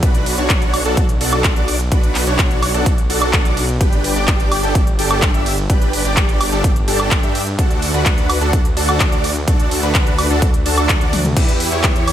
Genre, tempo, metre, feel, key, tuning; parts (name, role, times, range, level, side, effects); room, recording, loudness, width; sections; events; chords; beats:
EDM, festival progressive house; 127 BPM; 4/4; straight; D major; A4 = 441 Hz
big supersaw lead; riff; 0.0-12.1 s; D4 to E5; -20 LUFS; equal; analog chorus, sidechain pumping, analog delay
detuned saw bass; bass; 0.0-12.1 s; G1 to G2; -21 LUFS; equal; sidechain pumping
big-room dance drum kit; drums; 0.0-12.1 s; crash cymbal, handclaps, hi-hat, ride cymbal, toms, woodblock; -20 LUFS; equal
electronic kick drum; drums; 0.0-11.9 s; -16 LUFS; equal
light reverb; -13 LUFS; side -11 dB against mid
0.0-11.4 A section
drop 0.0-11.4; drum fill 11.1
0.0 Bm; 3.8 G; 7.6 D; 11.4 Em
| 0.03 0.50 0.97 1.45 | 1.92 2.39 2.86 3.33 | 3.81 4.28 4.75 5.22 | 5.70 6.17 6.64 7.11 | 7.59 8.06 8.53 9.00 | 9.48 9.95 10.42 10.89 | 11.37 11.84